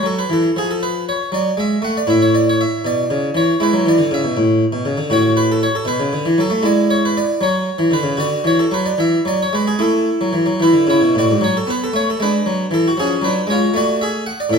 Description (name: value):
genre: classical, baroque-style suite movement for harpsichord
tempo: 72-81 BPM (dotted quarters)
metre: 6/8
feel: rubato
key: A major from 5.1 s, F# minor from 11.4 s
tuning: A4 = 445 Hz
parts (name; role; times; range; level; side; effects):
- harpsichord; solo; 0.0-14.6 s; G#2 to F#5; -14 LUFS; equal; none
room: wet stone room reverb, RT60 1.2 s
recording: heard from further back in the room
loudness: -14 LUFS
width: side -6 dB against mid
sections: 0.0-11.4 A section; 11.4-14.6 A section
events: none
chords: 0.0 F#m; 0.5 N.C.; 1.3 F#m; 2.1 A; 3.6 E; 4.3 A; 5.1 F#m/A; 5.9 Bm7; 6.6 E/G#; 7.4 F#5; 8.2 Dmaj13; 9.0 E; 9.8 A; 11.4 F#m; 13.0 C#/E#; 13.7 F#m/A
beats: | 0.55 1.31 | 2.07 2.84 | 3.59 4.34 | 5.09 5.85 | 6.62 7.39 | 8.17 8.97 | 9.78 10.59 | 11.41 12.19 | 12.96 13.73 | 14.50